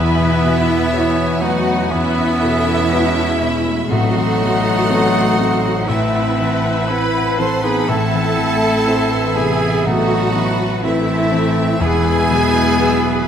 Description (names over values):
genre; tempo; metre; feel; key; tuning
cinematic, emotional film score for orchestra; 60 BPM; 4/4; rubato; unclear; A4 = 440 Hz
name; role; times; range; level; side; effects
rich studio violin section; melody; 0.0-13.3 s; E5 to C6; -27 LUFS; left 1 dB; none
mellow cor anglais; second line; 0.0-13.3 s; B3 to A4; -24 LUFS; right 2 dB; none
mellow silver concert flute; second line; 0.0-13.3 s; E5 to C6; -25 LUFS; left 1 dB; none
rich studio violin section; second line; 0.0-13.3 s; E5 to F#6; -29 LUFS; left 3 dB; none
warm clarinet; second line; 0.0-13.3 s; A3 to E4; -24 LUFS; left 3 dB; none
rich studio viola section; accompaniment; 0.0-13.3 s; G#3 to E5; -23 LUFS; right 2 dB; none
warm concert grand piano; accompaniment; 0.0-13.3 s; E2 to C5; -22 LUFS; left 1 dB; none
mellow French horn section; sustained chords; 0.0-13.3 s; E3 to B4; -23 LUFS; left 2 dB; none
concert harp; arpeggios; 0.0-13.3 s; E2 to B5; -26 LUFS; left 7 dB; none
rich studio cello section; bass; 0.0-13.3 s; E4 to C5; -22 LUFS; right 2 dB; none
rich studio double bass section; bass; 0.0-13.3 s; E1 to E2; -24 LUFS; right 3 dB; none
timpani; percussion; 11.8-13.2 s; E2; -27 LUFS; equal; none
room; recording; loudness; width
wet scoring stage reverb, RT60 2.0 s; none; -14 LUFS; side -8 dB against mid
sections
0.0-13.3 A section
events
none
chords
0.0 Esus2; 3.9 Amadd9; 11.8 Esus2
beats
0.93 1.92 2.92 | 3.91 4.90 5.89 6.89 | 7.89 8.87 9.86 10.84 | 11.81 12.79